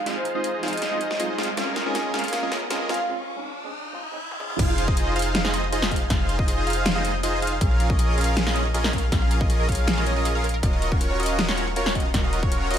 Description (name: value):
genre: future bass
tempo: 159 BPM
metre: 4/4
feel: half-time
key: Bb minor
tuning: A4 = 440 Hz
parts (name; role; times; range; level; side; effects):
- riser; sound effects; 0.2-4.6 s; none; -35 LUFS; equal; none
- bright tine electric piano; accompaniment; 0.1-4.6 s; Ab3 to Ab4; -34 LUFS; right 2 dB; medium stereo tremolo, sidechain pumping, ping-pong delay
- supersaw chords; riff; 0.1-12.8 s; Db4 to F5; -26 LUFS; equal; cassette tape, sidechain pumping, low-pass filter, ping-pong delay
- big-room dance drum kit; drums; 0.1-12.8 s; crash cymbal, hi-hat, snare drum, toms; -28 LUFS; left 1 dB; high-pass filter on snare, high-pass filter on hats, high-pass filter on toms, high-pass filter on cymbals, high-pass filter on room
- vibraphone with hard mallets; melody; 0.2-3.0 s; C5 to Ab5; -31 LUFS; right 1 dB; sidechain pumping, low-pass filter, ping-pong delay
- airy dreamy lead; arpeggios; 4.6-12.8 s; Db5 to F5; -33 LUFS; right 1 dB; chorus, sidechain pumping, ping-pong delay
- wide unison pluck; arpeggios; 4.6-12.7 s; Ab4 to Eb6; -35 LUFS; right 4 dB; phaser, sidechain pumping, ping-pong delay
- warm 808-style bass; bass; 4.6-12.8 s; Eb1 to Bb1; -26 LUFS; equal; sidechain pumping
- electronic kick drum; drums; 4.6-12.5 s; none; -23 LUFS; equal; none
room: light reverb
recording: high-pass filter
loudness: -21 LUFS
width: side -9 dB against mid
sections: 0.0-4.6 A section; 4.6-12.8 B section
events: build-up 0.0-4.6; drum fill 0.0-3.1, 4.3; riser 0.2-4.6; break 3.1-4.6; drop 4.6-12.8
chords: 0.0 Fm7; 1.6 Bbm7; 4.6 Fm7; 7.6 Bbm7; 10.6 Ebm9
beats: | 0.06 0.44 0.82 1.20 | 1.57 1.95 2.33 2.71 | 3.08 3.46 3.84 4.21 | 4.59 4.97 5.35 5.72 | 6.10 6.48 6.86 7.23 | 7.61 7.99 8.37 8.74 | 9.12 9.50 9.88 10.25 | 10.63 11.01 11.38 11.76 | 12.14 12.52